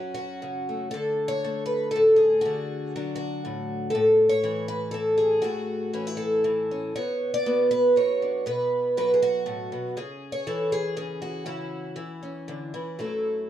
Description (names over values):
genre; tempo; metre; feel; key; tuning
folk, solo fingerstyle acoustic guitar; 119 BPM; 3/4; straight; unclear; A4 = 439 Hz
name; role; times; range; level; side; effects
picked twelve-string acoustic guitar; solo; 0.0-13.5 s; F#2 to D5; -23 LUFS; equal; none
room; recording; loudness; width
moderate large studio reverb, RT60 0.8 s; dark, warm production; -22 LUFS; side -11 dB against mid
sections
0.9-13.0 A section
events
none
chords
0.0 F#m; 0.9 D; 3.9 A; 7.0 Bm; 10.0 C#m; 13.0 F#m7